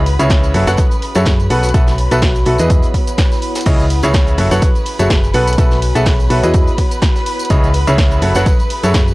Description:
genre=piano house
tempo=125 BPM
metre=4/4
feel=swing 55% on 16ths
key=unclear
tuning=A4 = 440 Hz
part: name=muted chamber violin section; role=sustained chords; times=0.0-9.1 s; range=B4 to B5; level=-25 LUFS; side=equal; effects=sidechain pumping
part: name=solid FM bass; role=bass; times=0.0-9.1 s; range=F#1 to F#2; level=-16 LUFS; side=equal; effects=sidechain pumping
part: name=warbly tape-like pad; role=texture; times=0.0-9.1 s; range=B3 to G#5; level=-27 LUFS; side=equal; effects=chorus, built-in reverb, sidechain pumping
part: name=punchy analog drum machine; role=drums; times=0.1-9.1 s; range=cabasa, crash cymbal, hi-hat, ride cymbal, snare drum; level=-24 LUFS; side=equal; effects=none
part: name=tight funk drum kit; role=drums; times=0.1-9.1 s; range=hi-hat, snare drum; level=-31 LUFS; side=right 1 dB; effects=none
part: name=marimba with medium mallets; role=melody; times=0.2-9.0 s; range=F#4 to C#5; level=-24 LUFS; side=equal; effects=tape echo
part: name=bright baby grand piano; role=riff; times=0.2-9.0 s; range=C#3 to F#5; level=-18 LUFS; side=equal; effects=sidechain pumping
part: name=tambourine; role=percussion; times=0.2-9.1 s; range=none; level=-33 LUFS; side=right 1 dB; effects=none
part: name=electronic kick drum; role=drums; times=0.3-9.0 s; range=none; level=-14 LUFS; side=equal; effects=none
room=little or no reverb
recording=dry, gritty hardware recording, transformer saturation, cassette tape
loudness=-11 LUFS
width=side -20 dB against mid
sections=0.0-9.1 A section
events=none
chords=0.0 C#madd9; 0.5 F#m7; 1.5 B7sus4; 2.7 Emaj7; 3.7 C#madd9; 4.4 F#m7; 5.3 B7sus4; 6.5 Emaj7; 7.5 C#madd9; 8.2 F#m7

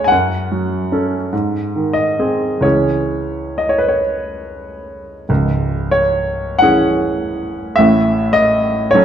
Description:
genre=classical, romantic nocturne for solo piano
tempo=43-54 BPM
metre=4/4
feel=rubato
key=C# minor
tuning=A4 = 440 Hz
part: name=clear baby grand piano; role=solo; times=0.0-9.0 s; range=C#1 to G#5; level=-14 LUFS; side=equal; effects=none
room=moderate recital hall reverb, RT60 1.5 s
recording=dark, warm production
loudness=-14 LUFS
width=side -9 dB against mid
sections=0.0-5.3 A section; 5.3-9.0 A section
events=none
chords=0.1 F#m; 1.3 G#; 2.6 C#m; 7.8 A

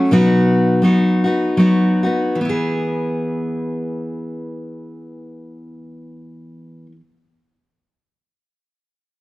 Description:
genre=folk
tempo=71-87 BPM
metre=3/4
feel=swing 57% on 8ths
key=E major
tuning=A4 = 436 Hz
part: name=picked steel-string acoustic guitar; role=accompaniment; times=0.0-7.0 s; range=B2 to G#4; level=-16 LUFS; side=equal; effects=none
room=moderate large studio reverb, RT60 1.3 s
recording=none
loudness=-15 LUFS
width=side -18 dB against mid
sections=0.0-2.4 A section; 2.4-7.4 B section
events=slowing down 0.0-2.4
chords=0.1 B; 2.4 E

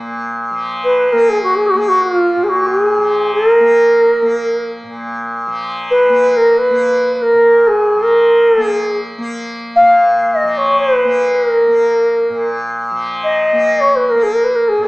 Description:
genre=indian classical, Hindustani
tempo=free time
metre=none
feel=none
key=Bb raga bhairavi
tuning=A4 = 440 Hz
part: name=tanpura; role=drone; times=0.0-14.9 s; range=Bb2 to Bb3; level=-21 LUFS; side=equal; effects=none
part: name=bright reedy bansuri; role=melody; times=0.8-14.9 s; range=F4 to F5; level=-10 LUFS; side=equal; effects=none
room=wet large studio reverb, RT60 1.0 s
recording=band playing live in one room, small speaker sound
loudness=-11 LUFS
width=side -22 dB against mid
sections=0.0-14.9 A section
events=none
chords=none

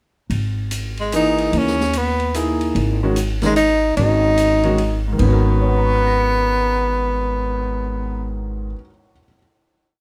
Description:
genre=modal jazz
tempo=148 BPM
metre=3/4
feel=swing 64% on 8ths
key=G# minor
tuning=A4 = 440 Hz
part: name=upright bass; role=bass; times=0.3-8.7 s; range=G#1 to D#2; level=-23 LUFS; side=equal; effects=none
part: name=open jazz drum kit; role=drums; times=0.3-7.5 s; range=crash cymbal, cymbal swell, hi-hat, kick drum, ride cymbal, snare drum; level=-33 LUFS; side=equal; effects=none
part: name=bright tenor saxophone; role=melody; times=1.0-8.4 s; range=G#3 to D#4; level=-21 LUFS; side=equal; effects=none
part: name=clear baby grand piano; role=accompaniment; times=1.1-9.4 s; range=G#2 to C#7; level=-25 LUFS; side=equal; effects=none
room=light reverb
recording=none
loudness=-19 LUFS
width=mono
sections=0.3-5.2 A section; 5.2-7.6 final chord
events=none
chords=0.3 G#9sus4; 5.2 G#m11

